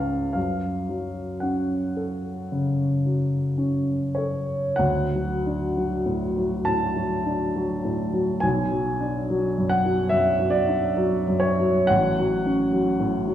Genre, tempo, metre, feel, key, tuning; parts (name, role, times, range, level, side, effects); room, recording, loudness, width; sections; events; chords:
classical, romantic nocturne for solo piano; 45-75 BPM; 4/4; rubato; A4 = 441 Hz
warm baby grand piano; solo; 0.0-13.3 s; A1 to A5; -21 LUFS; equal
wet recital hall reverb, RT60 1.7 s; heard from further back in the room; -21 LUFS; side -10 dB against mid
0.0-4.8 A section; 4.8-13.3 B section
0.4 F#m; 4.8 D; 8.4 Bm; 11.9 F#m/A